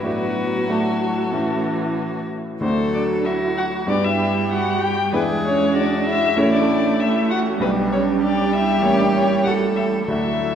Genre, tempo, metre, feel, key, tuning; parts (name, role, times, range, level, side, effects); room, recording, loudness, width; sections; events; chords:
quick classical-period movement for piano quintet; 96 BPM; 4/4; straight; A4 = 445 Hz
muted violin; melody; 0.0-10.6 s; A4 to G5; -24 LUFS; left 4 dB
muted violin; second line; 0.0-10.6 s; C#4 to A4; -25 LUFS; left 1 dB
bright baby grand piano; accompaniment; 0.0-10.6 s; A1 to A4; -24 LUFS; left 1 dB
muted viola; accompaniment; 0.0-10.6 s; E3 to A3; -24 LUFS; right 3 dB
muted cello; second line; 0.1-10.6 s; A3 to G4; -26 LUFS; right 4 dB
wet concert hall reverb, RT60 1.9 s; heard from further back in the room; -17 LUFS; side -8 dB against mid
0.0-10.6 A section
0.1 D/A; 1.3 A; 2.6 D; 3.9 G; 5.1 E7; 6.4 A; 7.6 G/B; 8.8 A5